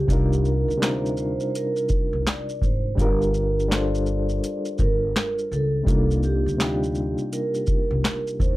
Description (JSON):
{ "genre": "lo-fi hip hop", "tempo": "83 BPM", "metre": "4/4", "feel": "swing 63% on 16ths", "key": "unclear", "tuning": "A4 = 441 Hz", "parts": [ { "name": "vibraphone with soft mallets", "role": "melody", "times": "0.0-8.6 s", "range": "G4 to D5", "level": "-27 LUFS", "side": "right 2 dB", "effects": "low-pass filter" }, { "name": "overdriven reed electric piano", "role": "accompaniment", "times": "0.0-8.6 s", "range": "C3 to C5", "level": "-27 LUFS", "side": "left 1 dB", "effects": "medium tremolo, cassette tape, low-pass filter" }, { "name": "upright bass", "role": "bass", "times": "0.0-8.6 s", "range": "G1 to Eb2", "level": "-25 LUFS", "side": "equal", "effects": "transformer saturation" }, { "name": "booming analog drum machine", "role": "drums", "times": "0.1-8.6 s", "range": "handclaps, hi-hat, kick drum, shaker, snare drum", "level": "-24 LUFS", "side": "equal", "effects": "none" } ], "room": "little or no reverb", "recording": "dry, gritty hardware recording", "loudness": "-21 LUFS", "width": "side -18 dB against mid", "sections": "0.0-8.6 A section", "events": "none", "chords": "0.1 Cm11; 3.0 Gm7; 5.9 Cm11" }